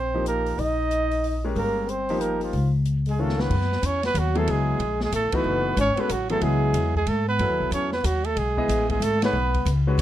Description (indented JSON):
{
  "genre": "modal jazz",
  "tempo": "185 BPM",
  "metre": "3/4",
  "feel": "swing 62% on 8ths",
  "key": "F# dorian from 3.5 s",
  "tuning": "A4 = 444 Hz",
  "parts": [
    { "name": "mellow trumpet", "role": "melody", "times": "0.0-9.7 s", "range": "F4 to Eb5", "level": "-26 LUFS", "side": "right 4 dB", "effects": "none" },
    { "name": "breathy trombone", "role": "second line", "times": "0.0-10.0 s", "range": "F3 to Eb4", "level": "-30 LUFS", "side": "left 4 dB", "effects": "none" },
    { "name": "upright bass", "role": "bass", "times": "0.0-10.0 s", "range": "F#1 to G#2", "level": "-25 LUFS", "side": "equal", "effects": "none" },
    { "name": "clear baby grand piano", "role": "accompaniment", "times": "0.1-10.0 s", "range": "Eb3 to D#5", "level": "-28 LUFS", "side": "left 2 dB", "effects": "none" },
    { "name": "open jazz drum kit", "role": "drums", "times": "0.3-10.0 s", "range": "crash cymbal, hi-hat, kick drum, ride cymbal, snare drum", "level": "-33 LUFS", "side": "equal", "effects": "none" }
  ],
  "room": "little or no reverb",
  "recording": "close, detailed microphones",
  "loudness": "-21 LUFS",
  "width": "side -12 dB against mid",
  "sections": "0.0-3.5 A section; 3.5-10.0 B section",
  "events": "drum fill 3.2-3.5; band accent 5.3, 9.2",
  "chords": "0.0 Ebadd9/Bb; 2.5 Db; 3.5 F#m11; 7.4 G#m"
}